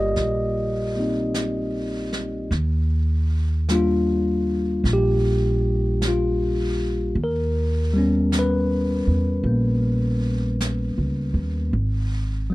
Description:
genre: jazz ballad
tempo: 52 BPM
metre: 4/4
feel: swing 67% on 8ths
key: Eb major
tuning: A4 = 441 Hz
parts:
  - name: tine electric piano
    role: accompaniment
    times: 0.0-12.5 s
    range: Gb3 to Eb5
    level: -22 LUFS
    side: left 1 dB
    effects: none
  - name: upright bass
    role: bass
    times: 0.0-12.5 s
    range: G1 to Fb2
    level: -23 LUFS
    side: equal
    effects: none
  - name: jazz brush drum kit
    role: drums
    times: 0.2-12.5 s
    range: brushed snare drum, hi-hat, snare drum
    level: -34 LUFS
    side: right 2 dB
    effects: none
room: little or no reverb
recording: none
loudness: -20 LUFS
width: side -18 dB against mid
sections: 0.0-2.5 A section; 2.5-12.5 B section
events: none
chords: 0.0 Ebmaj9; 7.2 Eb7b13; 11.7 N.C.

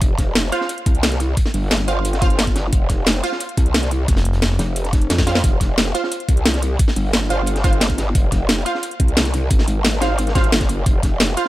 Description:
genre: dark technical drum and bass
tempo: 177 BPM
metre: 4/4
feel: straight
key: F minor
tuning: A4 = 440 Hz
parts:
  - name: growl bass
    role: bass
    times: 0.0-11.4 s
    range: F1 to F2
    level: -20 LUFS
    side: equal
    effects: chorus, tube saturation, sidechain pumping
  - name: crunchy breakbeat drum kit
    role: drums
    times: 0.0-11.5 s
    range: hi-hat, snare drum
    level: -29 LUFS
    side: equal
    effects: high-pass filter on hats, high-pass filter on snare, high-pass filter on room
  - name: drum and bass drum kit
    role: drums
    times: 0.0-11.4 s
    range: hi-hat, snare drum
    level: -20 LUFS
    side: equal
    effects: none
  - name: electronic kick drum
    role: drums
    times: 0.0-11.1 s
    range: none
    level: -17 LUFS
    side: equal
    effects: none
  - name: orchestra-hit-like synth stab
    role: stabs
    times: 0.5-11.4 s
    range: F4 to F5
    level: -25 LUFS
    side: right 3 dB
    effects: built-in reverb, tape echo
  - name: growling FM bass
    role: bass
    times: 4.1-4.6 s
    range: F1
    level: -17 LUFS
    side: equal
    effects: none
room: little or no reverb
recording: none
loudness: -16 LUFS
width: side -16 dB against mid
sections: 0.0-11.5 A section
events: drum fill 5.1-5.4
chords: 0.0 F5

